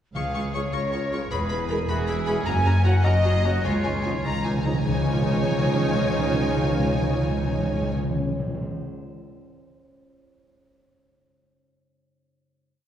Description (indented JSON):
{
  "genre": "cinematic, heroic adventure film score",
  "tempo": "103 BPM (dotted quarters)",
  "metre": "6/8",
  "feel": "straight",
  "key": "Db mixolydian",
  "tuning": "A4 = 440 Hz",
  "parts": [
    { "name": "warm clarinet", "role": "second line", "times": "0.1-7.9 s", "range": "Ab4 to Ab5", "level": "-34 LUFS", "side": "left 1 dB", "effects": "none" },
    { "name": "timpani", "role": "percussion", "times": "0.1-0.7, 3.6-8.7 s", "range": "Db3", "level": "-27 LUFS", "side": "equal", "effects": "none" },
    { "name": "warm symphonic violin section", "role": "melody", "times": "0.2-7.9 s", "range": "Ab5 to Db6", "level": "-33 LUFS", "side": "left 3 dB", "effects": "none" },
    { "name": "clear oboe", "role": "second line", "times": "0.2-4.5 s", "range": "Db4 to Bb4", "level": "-35 LUFS", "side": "right 1 dB", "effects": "none" },
    { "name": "mellow large flute ensemble", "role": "second line", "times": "0.2-7.9 s", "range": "G#4 to Ab5", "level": "-34 LUFS", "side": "equal", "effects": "none" },
    { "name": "warm symphonic violin section", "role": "second line", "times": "0.2-7.9 s", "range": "G#4 to Ab5", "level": "-33 LUFS", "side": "left 1 dB", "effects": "none" },
    { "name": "rich symphonic viola section", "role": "accompaniment", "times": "0.2-7.9 s", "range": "Ab3 to G#4", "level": "-34 LUFS", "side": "right 1 dB", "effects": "none" },
    { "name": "concert harp", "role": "arpeggios", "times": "0.2-8.8 s", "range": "E2 to F5", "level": "-34 LUFS", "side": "left 4 dB", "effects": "none" },
    { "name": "rich symphonic cello section", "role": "bass", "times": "0.2-7.9 s", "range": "Db2 to Gb2", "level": "-28 LUFS", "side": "right 1 dB", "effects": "none" },
    { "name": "rich symphonic double bass section", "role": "bass", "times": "0.2-7.9 s", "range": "E1 to Db2", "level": "-28 LUFS", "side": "right 1 dB", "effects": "none" },
    { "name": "mellow French horn section", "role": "sustained chords", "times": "0.5-7.9 s", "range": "G#3 to G#4", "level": "-34 LUFS", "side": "right 1 dB", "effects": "none" },
    { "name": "mellow trombone section", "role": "sustained chords", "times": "0.5-7.9 s", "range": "B2 to Gb3", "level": "-35 LUFS", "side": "right 2 dB", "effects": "none" }
  ],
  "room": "wet scoring stage reverb, RT60 1.7 s",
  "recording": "heard from further back in the room",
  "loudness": "-21 LUFS",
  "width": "side -10 dB against mid",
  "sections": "0.2-4.9 theme; 4.9-7.2 final chord",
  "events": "timpani fill 3.6-4.9",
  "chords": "0.2 Db; 1.3 E; 2.5 Gb; 3.6 Dbadd9",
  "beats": "| 0.16 0.74 | 1.32 1.89 | 2.47 3.05 | 3.65 4.25 | 4.86 5.44 | 6.01 6.60"
}